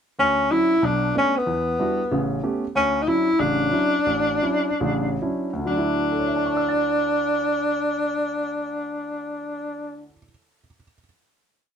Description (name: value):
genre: jazz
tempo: 131-188 BPM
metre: 4/4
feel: swing 62% on 8ths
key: D major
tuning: A4 = 440 Hz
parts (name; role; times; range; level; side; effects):
- mellow tenor saxophone; melody; 0.2-10.1 s; B3 to E4; -21 LUFS; left 1 dB; none
- warm grand piano; accompaniment; 0.2-11.0 s; A1 to A6; -26 LUFS; right 1 dB; none
room: light reverb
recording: close, detailed microphones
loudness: -20 LUFS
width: side -8 dB against mid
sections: 0.2-5.6 A section; 5.6-9.3 final chord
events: slowing down 2.7-5.6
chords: 0.2 Dmaj9; 0.8 Bm9; 1.5 Em9; 2.1 A9; 2.7 Dmaj9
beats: | 0.18 0.50 0.82 1.14 | 1.46 1.78 2.10 2.42 | 2.74 3.06 3.38 3.71 | 4.06 4.42 4.80 5.21 | 5.64 6.10 6.55 7.01 | 7.46 7.92 8.38 8.83